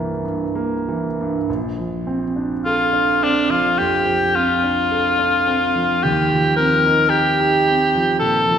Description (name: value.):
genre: classical, impressionist duo for cor anglais and grand piano.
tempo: 47-57 BPM.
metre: 4/4.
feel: rubato.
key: Bb major.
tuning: A4 = 441 Hz.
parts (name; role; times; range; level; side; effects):
warm grand piano; accompaniment; 0.0-8.6 s; Bb1 to G5; -20 LUFS; right 2 dB; none.
clear cor anglais; melody; 2.6-8.6 s; D4 to Bb4; -16 LUFS; left 1 dB; none.
room: wet scoring stage reverb, RT60 1.5 s.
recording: heard from further back in the room.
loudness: -16 LUFS.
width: side -8 dB against mid.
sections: 0.0-1.5 A section; 1.5-8.6 B section.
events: none.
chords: 0.0 C9; 1.5 Bbmaj9; 6.0 Eb69.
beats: 0.24 | 1.48 2.64 3.79 4.91 | 6.02 7.11 8.20.